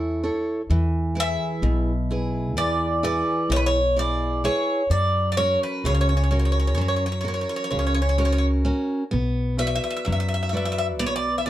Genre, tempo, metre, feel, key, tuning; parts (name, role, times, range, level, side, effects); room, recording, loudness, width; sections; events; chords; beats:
greek folk, Greek bouzouki band; 128 BPM (eighths); 9/8; straight; A4 = 440 Hz
picked steel-string acoustic guitar; accompaniment; 0.0-11.5 s; B2 to D5; -26 LUFS; right 2 dB
upright bass; bass; 0.0-11.5 s; B1 to F#2; -24 LUFS; equal
Greek bouzouki; melody; 1.2-11.5 s; B4 to E5; -24 LUFS; equal
light reverb; dark, warm production; -20 LUFS; side -13 dB against mid
0.7-11.5 A section
0.0 A; 0.7 E; 4.9 F#; 9.1 Bm
0.23 | 0.70 1.17 1.63 2.10 2.57 3.04 3.50 3.97 4.44 | 4.91 5.37 5.84 6.31 6.78 7.24 7.71 8.18 8.65 | 9.12 9.59 10.05 10.52 10.99 11.46